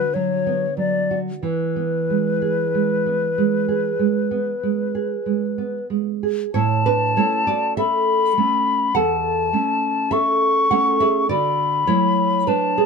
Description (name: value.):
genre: romantic duo for flute and classical guitar.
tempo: 45-52 BPM.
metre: 4/4.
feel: rubato.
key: A major.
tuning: A4 = 440 Hz.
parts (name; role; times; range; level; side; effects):
hollow concert flute; melody; 0.0-12.9 s; B4 to C#6; -20 LUFS; left 4 dB; none.
nylon-string guitar; accompaniment; 0.0-12.9 s; E2 to F#5; -21 LUFS; right 5 dB; none.
room: light reverb.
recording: close, detailed microphones.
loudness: -18 LUFS.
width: side -5 dB against mid.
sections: 0.0-6.5 A section; 6.5-12.9 B section.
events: none.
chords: 0.0 Bm/D; 1.4 E; 6.5 A; 11.3 D.